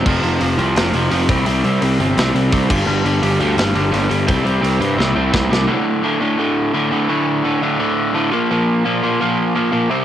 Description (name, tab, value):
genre	punk rock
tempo	171 BPM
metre	4/4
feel	straight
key	unclear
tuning	A4 = 440 Hz
part	overdriven electric guitar	riff	0.0-10.0 s	D2 to C4	-16 LUFS	equal	cassette tape
part	fuzz picked electric bass	bass	0.0-5.7 s	F1 to G2	-18 LUFS	equal	overdrive
part	tight metal drum kit	drums	0.1-5.6 s	crash cymbal, hi-hat, kick drum, snare drum	-21 LUFS	equal	cassette tape
room	little or no reverb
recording	home recording on cassette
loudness	-14 LUFS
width	side -10 dB against mid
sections	0.0-5.7 A section; 5.7-10.0 B section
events	half time 0.0-5.7; drum fill 5.0-5.7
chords	0.1 F5; 1.3 C5; 2.7 G5; 4.3 C5; 5.7 D5; 8.3 Bb5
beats	| 0.06 0.41 0.76 1.11 | 1.47 1.82 2.17 2.52 | 2.87 3.23 3.58 3.93 | 4.28 4.63 4.98 5.34 | 5.69 6.04 6.39 6.74 | 7.09 7.44 7.79 8.14 | 8.49 8.85 9.20 9.55 | 9.90